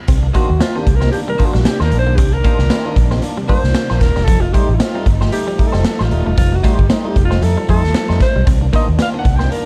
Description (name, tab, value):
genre	funk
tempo	114 BPM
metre	4/4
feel	swing 56% on 16ths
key	C dorian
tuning	A4 = 444 Hz
part	warm studio string section	sustained chords	0.1-9.7 s	Eb3 to Eb4	-30 LUFS	equal	none
part	electric guitar at the edge of break-up	riff	0.1-9.5 s	F3 to C4	-28 LUFS	equal	none
part	tonewheel organ	stabs	0.1-9.7 s	C3 to Eb4	-28 LUFS	equal	overdrive, plate reverb
part	vintage muted fingered electric bass	bass	0.1-9.5 s	Eb1 to F2	-18 LUFS	equal	none
part	raw garage drum kit	drums	0.1-9.7 s	hi-hat, kick drum, snare drum	-18 LUFS	equal	none
part	clean electric guitar	accompaniment	0.3-9.5 s	A3 to C5	-30 LUFS	equal	wah, spring reverb, plate reverb
part	warm alto saxophone	melody	0.4-9.7 s	Eb4 to G5	-24 LUFS	equal	plate reverb
room	little or no reverb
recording	dark, warm production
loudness	-15 LUFS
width	mono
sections	0.1-9.7 A section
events	alto saxophone solo 0.1-9.7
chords	0.1 Cm7; 4.3 F9; 8.5 Cm7